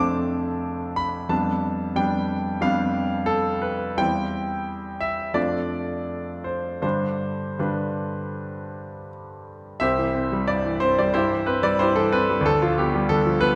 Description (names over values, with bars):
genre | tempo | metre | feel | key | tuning
classical, romantic character piece for solo piano | 78-96 BPM | 4/4 | rubato | C major | A4 = 440 Hz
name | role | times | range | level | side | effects
clear concert grand piano | solo | 0.0-13.6 s | C2 to D6 | -24 LUFS | equal | none
room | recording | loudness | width
wet recital hall reverb, RT60 1.3 s | recorded in a church or concert hall | -24 LUFS | mono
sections
0.0-9.8 A section; 9.8-13.6 B section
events
none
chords
0.0 Dm7/F; 1.3 G7/F; 4.0 C/E; 5.4 Dm/F; 6.8 G; 9.8 C; 12.4 G7/D